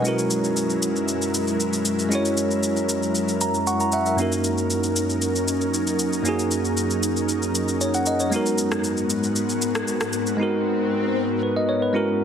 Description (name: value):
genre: amapiano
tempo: 116 BPM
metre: 4/4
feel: straight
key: unclear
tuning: A4 = 440 Hz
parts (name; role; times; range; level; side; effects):
- bell-like tine electric piano; accompaniment; 0.0-12.2 s; F#2 to C#6; -22 LUFS; right 1 dB; none
- ethereal airy pad; sustained chords; 0.0-12.2 s; F#2 to A#4; -26 LUFS; left 2 dB; ensemble chorus, built-in reverb
- electronic shaker and rim click; drums; 0.0-10.4 s; none; -28 LUFS; left 2 dB; none
- swell; sound effects; 10.3-11.4 s; none; -32 LUFS; left 6 dB; none
room: moderate digital room reverb, RT60 1.0 s, digital ambience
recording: heavily compressed radio sound, multiband compression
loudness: -20 LUFS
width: side -8 dB against mid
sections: 0.0-12.2 A section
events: tine electric piano fill 3.1-4.2; swell 10.3-12.2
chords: 0.0 F#7; 4.2 D#m7/F#; 8.3 G#m7